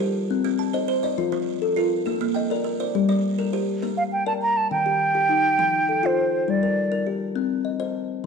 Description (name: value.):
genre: southern african traditional.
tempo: 136 BPM (dotted quarters).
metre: 12/8.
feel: straight.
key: Bb major.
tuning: A4 = 440 Hz.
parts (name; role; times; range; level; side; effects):
buzzing kalimba; arpeggios; 0.0-4.1 s; F3 to A5; -28 LUFS; right 12 dB; none.
kalimba; arpeggios; 0.0-8.3 s; Eb3 to Eb5; -24 LUFS; left 6 dB; none.
hollow wooden flute; melody; 4.0-7.1 s; C5 to Bb5; -21 LUFS; right 3 dB; none.
room: wet echo chamber reverb, RT60 1.9 s, studio ambience.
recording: 1960s-style stereo with parts hard left and right.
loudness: -20 LUFS.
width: side -5 dB against mid.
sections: 0.0-3.8 A section; 3.8-8.3 B section.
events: none.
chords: 0.3 Cm; 1.2 F; 2.1 Bb; 2.9 Gm; 3.8 Bb; 4.7 Eb; 5.6 F; 6.5 Gm; 7.4 Cm.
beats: | 0.30 0.74 1.18 1.62 | 2.06 2.50 2.95 3.39 | 3.83 4.27 4.71 5.15 | 5.59 6.03 6.47 6.92 | 7.36 7.80 8.24.